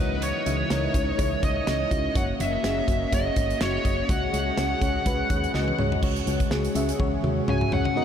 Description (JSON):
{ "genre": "1980s-style pop", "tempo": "124 BPM", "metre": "4/4", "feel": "swing 55% on 16ths", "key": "unclear", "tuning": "A4 = 440 Hz", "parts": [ { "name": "high-gain lead guitar", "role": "melody", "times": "0.0-8.0 s", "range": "B4 to G#5", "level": "-28 LUFS", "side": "equal", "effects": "distortion, ping-pong delay" }, { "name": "FM electric piano with soft pad layer", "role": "accompaniment", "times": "0.0-8.0 s", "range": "G#3 to E5", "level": "-29 LUFS", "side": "left 2 dB", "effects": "chorus" }, { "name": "warm analog pad", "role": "sustained chords", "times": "0.0-8.0 s", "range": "C#3 to D#5", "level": "-33 LUFS", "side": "equal", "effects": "chorus" }, { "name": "solid FM bass", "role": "bass", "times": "0.0-7.9 s", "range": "F#1 to D#2", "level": "-29 LUFS", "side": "equal", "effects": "none" }, { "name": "modern studio drum kit", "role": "drums", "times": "0.2-8.0 s", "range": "crash cymbal, hi-hat, kick drum, snare drum, toms", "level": "-28 LUFS", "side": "equal", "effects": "none" } ], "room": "moderate huge ambient reverb, RT60 7.4 s", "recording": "dreamy mix soaked in reverb", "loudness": "-22 LUFS", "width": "side -8 dB against mid", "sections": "0.0-6.0 A section; 6.0-8.0 B section", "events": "drum fill 5.5-6.0, 7.0-8.0", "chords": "0.0 C#madd9; 2.2 F#; 4.1 C#sus4", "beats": "| 0.22 0.70 1.19 1.67 | 2.16 2.64 3.12 3.61 | 4.09 4.58 5.06 5.54 | 6.03 6.51 6.99 7.48 | 7.96" }